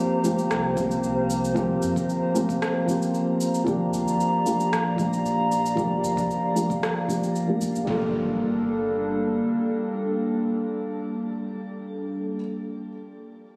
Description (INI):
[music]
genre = organic downtempo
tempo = 114 BPM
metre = 4/4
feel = swing 53% on 16ths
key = G minor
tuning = A4 = 437 Hz
[part]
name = felt-muted upright piano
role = accompaniment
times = 0.0-13.6 s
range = F3 to A4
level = -28 LUFS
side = equal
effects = sidechain pumping, low-pass filter, digital delay
[part]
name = warbly tape-like pad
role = sustained chords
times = 0.0-12.4 s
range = G3 to Bb5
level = -30 LUFS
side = equal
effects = chorus, built-in reverb, sidechain pumping, shimmer reverb
[part]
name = warm sub bass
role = bass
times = 0.2-9.4 s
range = F1 to F2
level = -38 LUFS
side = equal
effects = sidechain pumping
[part]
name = electronic cabasa and rim click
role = drums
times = 0.2-7.9 s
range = none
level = -35 LUFS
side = equal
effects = none
[part]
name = electronic kick drum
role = drums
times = 0.8-8.0 s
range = none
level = -37 LUFS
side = equal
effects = none
[part]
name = impact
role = sound effects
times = 7.9-12.4 s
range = none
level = -40 LUFS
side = equal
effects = none
[sound]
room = wet lush hall reverb, RT60 1.8 s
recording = recorded on a phone in the room, club reverb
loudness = -25 LUFS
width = mono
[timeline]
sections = 0.0-7.9 A section; 7.9-12.1 B section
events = filter sweep on felt piano 0.0-7.9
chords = 0.0 C7sus4; 3.7 Gm7; 7.9 Gm9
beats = 0.50 1.03 | 1.56 2.08 2.61 3.14 | 3.66 4.19 4.71 5.24 | 5.77 6.29 6.82 7.35 | 7.87 8.40 8.93 9.45 | 9.98 10.50 11.03 11.56